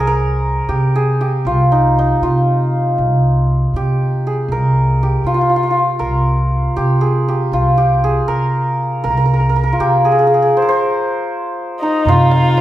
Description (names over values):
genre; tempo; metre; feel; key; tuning
Persian modal ensemble; 79 BPM (dotted quarters); 6/8; straight; C dastgah shur; A4 = 441 Hz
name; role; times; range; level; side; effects
santur; melody; 0.0-12.6 s; Eb4 to Ab5; -16 LUFS; equal; none
upright bass; bass; 0.0-12.6 s; C2 to C3; -15 LUFS; equal; none
warm kamancheh; second line; 11.8-12.6 s; Eb4 to F4; -18 LUFS; left 1 dB; none
tombak; percussion; 12.1-12.6 s; none; -18 LUFS; right 2 dB; none
room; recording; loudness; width
moderate recital hall reverb, RT60 1.4 s; recorded in a church or concert hall; -13 LUFS; side -13 dB against mid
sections
0.0-12.1 A section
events
stop 10.6-12.1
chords
none